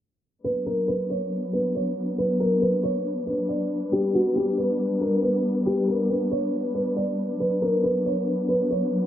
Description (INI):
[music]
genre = hip hop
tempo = 138 BPM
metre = 4/4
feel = half-time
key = B harmonic minor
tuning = A4 = 441 Hz
[part]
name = dark concert grand piano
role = melody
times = 0.4-9.1 s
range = F#4 to D5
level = -25 LUFS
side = right 1 dB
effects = low-pass filter, analog delay
[part]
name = dark chamber string section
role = sustained chords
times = 0.4-9.1 s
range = F#3 to B4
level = -25 LUFS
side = left 1 dB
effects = none
[sound]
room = light reverb, small room ambience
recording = echo-heavy mix, low-pass filter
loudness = -22 LUFS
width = side -11 dB against mid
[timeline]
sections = 0.4-9.1 A section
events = filter sweep 0.4-9.1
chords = 0.4 Bmadd9; 3.9 G; 7.4 Bmadd9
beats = | 0.45 0.88 1.31 1.75 | 2.18 2.62 3.05 3.49 | 3.92 4.36 4.79 5.23 | 5.66 6.10 6.53 6.97 | 7.40 7.84 8.27 8.71